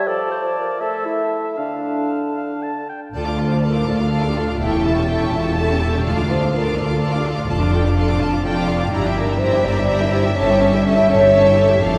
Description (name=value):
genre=quick classical-period movement for symphony orchestra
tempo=83 BPM (dotted quarters)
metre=6/8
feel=rubato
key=D minor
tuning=A4 = 439 Hz
part: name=mellow clarinet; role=second line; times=0.0-2.9 s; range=D4 to C5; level=-28 LUFS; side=equal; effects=none
part: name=silver concert flute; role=second line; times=0.0-2.9 s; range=A5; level=-33 LUFS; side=equal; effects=none
part: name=warm oboe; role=second line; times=0.0-3.0 s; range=D5 to A5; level=-31 LUFS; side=equal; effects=none
part: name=warm bassoon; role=accompaniment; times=0.0-2.9 s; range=D3 to A3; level=-28 LUFS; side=equal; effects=none
part: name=warm studio violin section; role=second line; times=3.1-12.0 s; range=C#5 to D6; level=-29 LUFS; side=equal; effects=none
part: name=mellow French horn section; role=sustained chords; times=3.1-11.9 s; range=D4 to E5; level=-22 LUFS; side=equal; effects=none
part: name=rich studio viola section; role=accompaniment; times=3.2-12.0 s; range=C#4 to A4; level=-27 LUFS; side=equal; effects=none
part: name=rich studio double bass section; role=bass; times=3.2-12.0 s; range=E1 to D2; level=-24 LUFS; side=equal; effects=none
part: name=warm studio cello section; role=bass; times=3.2-12.0 s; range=D2 to G2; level=-24 LUFS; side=equal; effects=none
part: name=rich studio violin section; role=melody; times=3.9-12.0 s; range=E5 to A5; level=-31 LUFS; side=equal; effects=none
room=wet church reverb, RT60 2.9 s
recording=none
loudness=-18 LUFS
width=mono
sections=0.0-3.1 A section; 3.1-12.0 A section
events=none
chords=0.1 Dm/F; 0.8 A5; 1.6 Dm; 4.6 A7/E; 6.1 Dm; 7.5 Dm/F; 8.9 Em7b5/G; 10.4 A7/G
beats=| 0.07 0.81 | 1.57 2.36 | 3.14 3.88 | 4.61 5.34 | 6.06 6.78 | 7.50 8.22 | 8.93 9.65 | 10.37 11.10 | 11.82